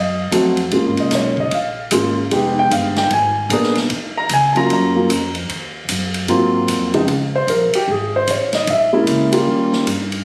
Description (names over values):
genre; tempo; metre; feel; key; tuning
jazz piano trio; 151 BPM; 4/4; swing 64% on 8ths; Eb minor; A4 = 440 Hz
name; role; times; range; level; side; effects
dark concert grand piano; melody; 0.0-9.8 s; Db2 to Bb5; -18 LUFS; equal; none
upright bass; bass; 0.0-10.2 s; F1 to Ab2; -27 LUFS; equal; none
swinging big-band drum kit; drums; 0.3-10.2 s; hi-hat, kick drum, ride cymbal, snare drum; -26 LUFS; equal; none
room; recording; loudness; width
light reverb; recorded on a phone in the room, studio reverb, compression; -17 LUFS; mono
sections
0.0-7.1 A section; 7.1-10.2 B section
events
none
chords
0.0 F7b9; 0.7 Bbm7; 2.3 Fm7b5; 3.1 Abmadd9; 3.9 Ebm9; 6.3 Ab13; 7.1 Db5; 8.7 Bbm7b5; 9.5 Eb7